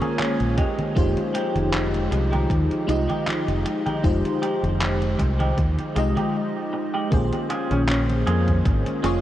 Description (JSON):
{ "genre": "vaporwave", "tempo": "78 BPM", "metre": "4/4", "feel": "swing 54% on 16ths", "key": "Bb dorian", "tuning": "A4 = 440 Hz", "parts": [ { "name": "FM electric piano with soft pad layer", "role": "accompaniment", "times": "0.0-9.2 s", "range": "Ab3 to Eb5", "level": "-25 LUFS", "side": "equal", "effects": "phaser, analog chorus, analog delay" }, { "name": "warbly tape-like pad", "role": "sustained chords", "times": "0.0-9.2 s", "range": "F3 to G4", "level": "-31 LUFS", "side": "equal", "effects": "chorus, built-in reverb" }, { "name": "clean electric guitar", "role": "riff", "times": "0.0-9.2 s", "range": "Ab3 to Ab5", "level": "-30 LUFS", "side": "right 2 dB", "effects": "wide subtle chorus, analog delay" }, { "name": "detuned 8-bit digital drum machine", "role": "drums", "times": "0.0-9.2 s", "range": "congas, handclaps, hi-hat", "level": "-29 LUFS", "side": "equal", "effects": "overdrive" }, { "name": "deep dub fingered electric bass", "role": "bass", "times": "0.4-9.2 s", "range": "F1 to F2", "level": "-23 LUFS", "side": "equal", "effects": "none" }, { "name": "electronic kick drum", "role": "drums", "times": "0.6-8.8 s", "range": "none", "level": "-23 LUFS", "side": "equal", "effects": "none" }, { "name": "breathy alto saxophone", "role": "melody", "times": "7.7-8.0 s", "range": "Db4", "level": "-32 LUFS", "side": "equal", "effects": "none" } ], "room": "moderate huge ambient reverb, RT60 8.2 s", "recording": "dreamy mix soaked in reverb, cassette tape", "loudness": "-20 LUFS", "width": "side -13 dB against mid", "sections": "0.0-7.1 A section; 7.1-9.2 B section", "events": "clean electric guitar fill 0.0-1.0; break 6.3-7.1", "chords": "0.0 Bbm7; 0.6 Fm9; 7.1 Bbm7" }